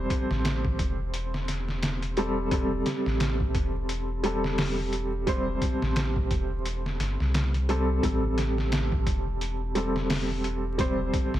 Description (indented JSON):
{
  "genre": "trip hop",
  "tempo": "87 BPM",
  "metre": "4/4",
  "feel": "swing 58% on 16ths",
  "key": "A minor",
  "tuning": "A4 = 440 Hz",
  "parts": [
    { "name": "felt-muted upright piano", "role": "accompaniment", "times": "0.0-11.4 s", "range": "G3 to C5", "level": "-29 LUFS", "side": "equal", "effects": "tremolo, tape echo" },
    { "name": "soft dub sub bass", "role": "bass", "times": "0.0-11.4 s", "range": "E1 to C2", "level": "-30 LUFS", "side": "equal", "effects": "none" },
    { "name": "trip hop sampler-style drum kit", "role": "drums", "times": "0.1-11.4 s", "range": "hi-hat, kick drum, snare drum", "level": "-29 LUFS", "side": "equal", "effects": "overdrive" }
  ],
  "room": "digital ambience",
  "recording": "vinyl crackle",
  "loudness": "-25 LUFS",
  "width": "side -13 dB against mid",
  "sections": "0.0-11.4 A section",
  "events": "none",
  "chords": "0.0 Am7",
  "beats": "0.45 1.14 1.82 | 2.51 3.20 3.89 4.58 | 5.27 5.96 6.65 7.34 | 8.03 8.72 9.41 10.10 | 10.79"
}